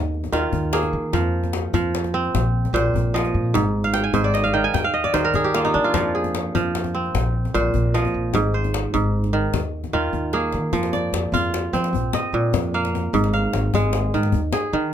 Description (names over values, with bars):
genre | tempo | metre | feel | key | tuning
west african traditional, West African string and xylophone music | 100 BPM (dotted quarters) | 12/8 | straight | F dorian | A4 = 438 Hz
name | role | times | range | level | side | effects
kora | arpeggios | 0.0-14.9 s | Ab2 to Ab5 | -21 LUFS | right 2 dB | none
upright bass | bass | 0.0-14.9 s | Ab1 to F3 | -24 LUFS | equal | none
djembe | percussion | 0.1-14.6 s | none | -27 LUFS | left 8 dB | none
room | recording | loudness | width
little or no reverb | close, detailed microphones | -19 LUFS | side -10 dB against mid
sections
0.0-10.7 A section; 10.7-14.9 B section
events
kora fill 3.8-5.9; drum fill 9.9-10.7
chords
0.0 Eb5; 1.1 Fm; 2.3 Bb5; 3.5 Ab5; 4.7 Eb5; 5.9 Fm; 7.1 Bb5; 8.3 Ab; 9.5 Eb5; 10.7 Fm; 11.9 Bb5; 13.1 Ab5; 14.3 Eb5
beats
0.53 | 1.14 1.74 2.34 2.94 | 3.54 4.14 4.74 5.34 | 5.94 6.54 7.14 7.74 | 8.34 8.94 9.54 10.14 | 10.74 11.34 11.94 12.54 | 13.14 13.74 14.34 14.94